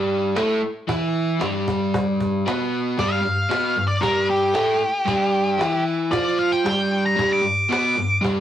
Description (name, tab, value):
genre	garage rock duo or trio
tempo	114 BPM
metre	4/4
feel	straight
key	G mixolydian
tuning	A4 = 440 Hz
part	overdriven electric guitar	riff	0.0-8.4 s	G2 to F4	-21 LUFS	equal	none
part	cajon	drums	0.4-8.4 s	none	-29 LUFS	equal	none
part	octave-fuzz lead guitar	melody	3.0-8.2 s	G4 to D6	-22 LUFS	left 1 dB	distortion
room	moderate stone room reverb, RT60 0.9 s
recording	rough rehearsal-room recording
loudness	-19 LUFS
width	side -11 dB against mid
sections	0.0-3.0 A section; 3.0-8.4 B section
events	lead electric guitar solo 3.0-8.4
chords	0.0 G